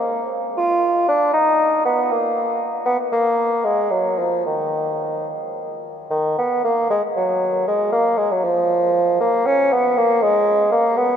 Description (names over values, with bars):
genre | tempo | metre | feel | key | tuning
classical, baroque-style fantasia for unaccompanied bassoon | 70-80 BPM (dotted quarters) | 6/8 | rubato | unclear | A4 = 439 Hz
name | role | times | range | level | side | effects
mellow bassoon | solo | 0.0-11.2 s | Eb3 to F4 | -17 LUFS | equal | none
room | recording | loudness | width
wet cathedral reverb, RT60 6.6 s | none | -16 LUFS | side -8 dB against mid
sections
0.0-6.1 A section; 6.1-11.2 B section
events
none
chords
none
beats
0.57 | 1.33 2.10 | 2.87 3.65 | 4.47 5.29 | 6.11 6.90 | 7.67 8.44 | 9.20 9.97 | 10.72